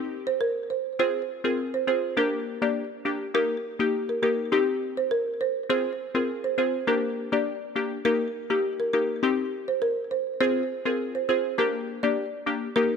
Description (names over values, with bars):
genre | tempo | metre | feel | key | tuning
dancehall | 102 BPM | 4/4 | straight | F dorian | A4 = 440 Hz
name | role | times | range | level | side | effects
wavetable chord stab | accompaniment | 0.0-13.0 s | Bb3 to Ab4 | -27 LUFS | left 3 dB | none
folk marimba with medium mallets | melody | 0.3-13.0 s | G4 to D5 | -26 LUFS | right 2 dB | none
room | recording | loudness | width
moderate lush hall reverb, RT60 2.6 s | none | -24 LUFS | side -6 dB against mid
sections
0.0-10.4 A section; 10.4-13.0 B section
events
none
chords
0.0 Cm; 1.0 Fm; 2.2 Gm; 3.3 Eb; 4.5 Cm; 5.7 Fm; 6.9 Gm; 8.1 Eb; 9.2 Cm; 10.4 Fm; 11.6 Gm